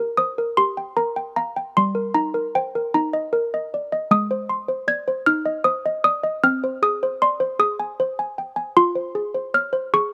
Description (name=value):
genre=classical, lullaby for handbells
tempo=51 BPM (dotted quarters)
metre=6/8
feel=straight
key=unclear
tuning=A4 = 440 Hz
part: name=malleted handbells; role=solo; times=0.0-10.1 s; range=G3 to Ab6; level=-22 LUFS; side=equal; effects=none
room=little or no reverb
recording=close, detailed microphones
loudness=-22 LUFS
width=mono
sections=0.0-10.1 A section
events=none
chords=0.0 Eb; 1.7 Eb/G; 4.1 Ab; 6.4 Ab/C; 8.8 Fm